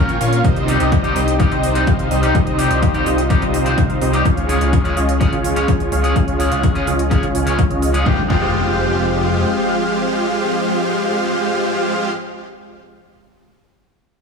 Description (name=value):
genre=EDM, festival progressive house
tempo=126 BPM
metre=4/4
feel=straight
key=F minor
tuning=A4 = 440 Hz
part: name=electric guitar at the edge of break-up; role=accompaniment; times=0.0-12.1 s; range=C3 to Db5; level=-23 LUFS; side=left 2 dB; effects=sidechain pumping, digital delay
part: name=lush unison pad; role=sustained chords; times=0.1-11.9 s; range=C3 to Ab4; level=-24 LUFS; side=right 1 dB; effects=chorus, sidechain pumping
part: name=dense compressed supersaw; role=riff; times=0.0-12.1 s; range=G3 to Ab5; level=-20 LUFS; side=right 1 dB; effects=sidechain pumping, low-pass filter, digital delay
part: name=fat analog bass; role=bass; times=0.0-9.5 s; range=F1 to Db2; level=-21 LUFS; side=left 1 dB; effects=sidechain pumping
part: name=electronic hi-hat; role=drums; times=0.1-8.0 s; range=none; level=-33 LUFS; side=right 4 dB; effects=overdrive
part: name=electronic kick drum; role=drums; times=0.4-8.4 s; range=none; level=-18 LUFS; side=left 1 dB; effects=overdrive
part: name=impact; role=sound effects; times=8.1-11.9 s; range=none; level=-26 LUFS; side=left 1 dB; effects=none
room=light reverb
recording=none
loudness=-14 LUFS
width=side -5 dB against mid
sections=0.0-8.1 A section; 8.1-11.9 B section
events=filter sweep on supersaw synth 0.0-8.1; filter sweep on analog synth bass 0.0-8.1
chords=0.4 Cm; 4.3 Db; 8.1 Fmadd9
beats=| 0.44 0.92 1.40 1.87 | 2.35 2.83 3.30 3.78 | 4.25 4.73 5.21 5.68 | 6.16 6.63 7.11 7.59 | 8.06 8.54 9.02 9.49 | 9.97 10.44 10.92 11.40